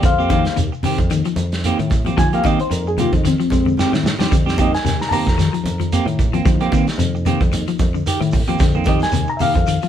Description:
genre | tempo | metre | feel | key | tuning
afrobeat | 112 BPM | 4/4 | swing 56% on 16ths | unclear | A4 = 440 Hz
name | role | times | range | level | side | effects
reed electric piano | accompaniment | 0.0-9.9 s | G3 to Bb5 | -22 LUFS | left 2 dB | medium tremolo
clean electric guitar | arpeggios | 0.0-9.9 s | C3 to F3 | -22 LUFS | left 7 dB | none
clean electric guitar | stabs | 0.0-9.9 s | Eb3 to G4 | -23 LUFS | right 6 dB | none
fingered electric bass | bass | 0.0-9.8 s | Eb2 to F3 | -23 LUFS | equal | none
warm soul drum kit | drums | 0.0-9.9 s | hi-hat, kick drum, snare drum | -20 LUFS | right 1 dB | none
shekere | percussion | 0.0-9.9 s | none | -27 LUFS | equal | none
congas | percussion | 0.3-9.7 s | none | -27 LUFS | right 1 dB | none
room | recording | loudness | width
moderate studio reverb, RT60 0.9 s | band playing live in one room | -15 LUFS | side -10 dB against mid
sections
0.0-9.9 A section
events
reed electric piano solo 0.0-9.9; drum fill 3.8-4.3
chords
0.0 F9sus4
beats
| 0.04 0.57 1.11 1.64 | 2.18 2.71 3.25 3.78 | 4.32 4.85 5.39 5.92 | 6.46 6.99 7.53 8.06 | 8.60 9.13 9.67

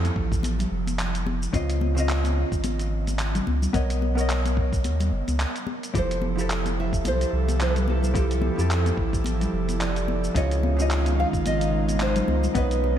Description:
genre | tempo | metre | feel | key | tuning
sunset chillout | 109 BPM | 4/4 | swing 57% on 16ths | unclear | A4 = 440 Hz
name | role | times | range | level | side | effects
vintage hollow-body jazz guitar | accompaniment | 0.0-13.0 s | C3 to Eb5 | -29 LUFS | moving between left 3 dB and right 5 dB | auto-pan, vintage 12-bit sampler grit, tape echo
warm sub bass | bass | 0.0-13.0 s | F1 to F2 | -25 LUFS | equal | none
dusty soul sampler-style drum kit | drums | 0.0-12.8 s | cabasa, handclaps, hi-hat | -33 LUFS | equal | none
congas | percussion | 0.1-13.0 s | none | -33 LUFS | left 4 dB | none
electronic kick drum | drums | 0.2-12.7 s | none | -27 LUFS | equal | none
airy breathy pad | sustained chords | 6.4-13.0 s | Eb3 to A4 | -30 LUFS | equal | chorus
nylon-string guitar | melody | 6.0-13.0 s | G4 to F5 | -30 LUFS | right 2 dB | tape echo
room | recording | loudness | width
moderate cathedral reverb, RT60 6.6 s | dreamy mix soaked in reverb | -22 LUFS | side -10 dB against mid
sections
0.0-13.0 A section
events
none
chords
0.0 Fmaj9; 1.5 Dbmaj9; 3.7 Bmaj9; 6.0 Fmaj9; 10.4 Dbmaj9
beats
0.45 1.00 | 1.55 2.10 2.65 3.20 | 3.75 4.30 4.85 5.40 | 5.95 6.50 7.05 7.60 | 8.15 8.70 9.25 9.80 | 10.35 10.90 11.45 12.01 | 12.55

